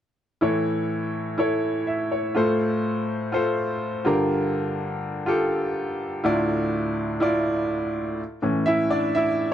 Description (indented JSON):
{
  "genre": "pop",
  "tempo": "124 BPM",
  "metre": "4/4",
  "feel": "straight",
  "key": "unclear",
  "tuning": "A4 = 440 Hz",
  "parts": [
    { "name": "bright upright piano", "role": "solo", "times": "0.4-9.5 s", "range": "D2 to E5", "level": "-22 LUFS", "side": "equal", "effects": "none" }
  ],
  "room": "little or no reverb",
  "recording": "dry, close 1970s-style studio recording",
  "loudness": "-22 LUFS",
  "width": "side -10 dB against mid",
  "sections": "0.4-8.2 A section; 8.2-9.5 B section",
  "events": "upright piano solo 8.2-9.5",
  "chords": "0.4 A; 2.4 F/A; 4.1 Gm7; 6.2 Dmadd9; 8.2 A"
}